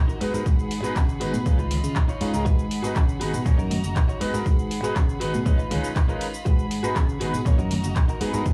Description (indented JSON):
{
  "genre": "filtered disco house",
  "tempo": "120 BPM",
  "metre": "4/4",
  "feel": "straight",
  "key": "G# dorian",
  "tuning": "A4 = 444 Hz",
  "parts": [
    { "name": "clear studio violin section", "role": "sustained chords", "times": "0.0-8.5 s", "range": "E#4 to B5", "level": "-39 LUFS", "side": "equal", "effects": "sidechain pumping, low-pass filter" },
    { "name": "direct-recorded clean electric guitar", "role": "riff", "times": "0.1-8.5 s", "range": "D#4 to C#5", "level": "-35 LUFS", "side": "equal", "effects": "vintage 12-bit sampler grit, sidechain pumping, low-pass filter" },
    { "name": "house drum kit", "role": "drums", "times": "0.1-8.5 s", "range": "handclaps, hi-hat, shaker", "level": "-37 LUFS", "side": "equal", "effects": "studio reverb, sidechain pumping on perc, sidechain pumping on hats, sidechain pumping on cymbals" },
    { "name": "bright concert grand piano", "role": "accompaniment", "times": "0.2-8.5 s", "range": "G#3 to C#5", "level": "-32 LUFS", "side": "equal", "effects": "phaser, sidechain pumping, low-pass filter" },
    { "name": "fingered electric bass", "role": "bass", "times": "0.2-8.5 s", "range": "F#1 to C#3", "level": "-30 LUFS", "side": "equal", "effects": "sidechain pumping, low-pass filter" },
    { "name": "tambourine and congas", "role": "percussion", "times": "0.2-8.5 s", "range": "none", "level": "-37 LUFS", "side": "equal", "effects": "sidechain pumping on perc, low-pass filter on perc" },
    { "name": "electronic kick drum", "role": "drums", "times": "0.5-8.5 s", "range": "none", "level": "-25 LUFS", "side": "equal", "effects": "studio reverb" }
  ],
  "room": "little or no reverb",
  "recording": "small room ambience",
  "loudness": "-23 LUFS",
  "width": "mono",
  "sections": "0.0-8.5 A section",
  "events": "none",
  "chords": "0.2 G#m7; 1.5 C#9; 2.5 G#m7; 3.5 F#6; 4.2 G#m7; 5.5 C#9; 6.5 G#m7; 7.5 F#6",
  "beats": "| 0.46 0.96 1.46 1.96 | 2.46 2.96 3.46 3.96 | 4.46 4.96 5.46 5.96 | 6.46 6.96 7.46 7.96 | 8.46"
}